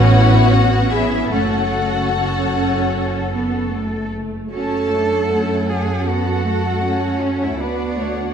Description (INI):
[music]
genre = cinematic, emotional film score for orchestra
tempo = 77 BPM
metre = 4/4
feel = rubato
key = F# minor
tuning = A4 = 439 Hz
[part]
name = warm symphonic violin section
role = melody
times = 0.0-8.3 s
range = C#5 to A5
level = -26 LUFS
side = left 6 dB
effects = none
[part]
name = rich symphonic violin section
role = second line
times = 0.0-8.3 s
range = E4 to A5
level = -24 LUFS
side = left 4 dB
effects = none
[part]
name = rich symphonic viola section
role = accompaniment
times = 0.0-8.3 s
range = A3 to F#4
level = -22 LUFS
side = right 1 dB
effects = none
[part]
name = rich symphonic cello section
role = bass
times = 0.0-8.3 s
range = A3 to A4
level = -25 LUFS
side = equal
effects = none
[part]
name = warm studio double bass section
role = bass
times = 0.0-8.3 s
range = F#1 to F#2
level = -20 LUFS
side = right 2 dB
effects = none
[part]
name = rich cello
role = melody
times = 4.5-8.3 s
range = C#4 to A4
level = -23 LUFS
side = right 3 dB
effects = none
[sound]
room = wet scoring stage reverb, RT60 1.4 s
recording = dark, warm production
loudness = -16 LUFS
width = side -8 dB against mid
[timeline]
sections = 0.0-4.5 A section; 4.5-8.3 A section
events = none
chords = 0.0 Aadd9; 1.3 F#m; 7.6 D6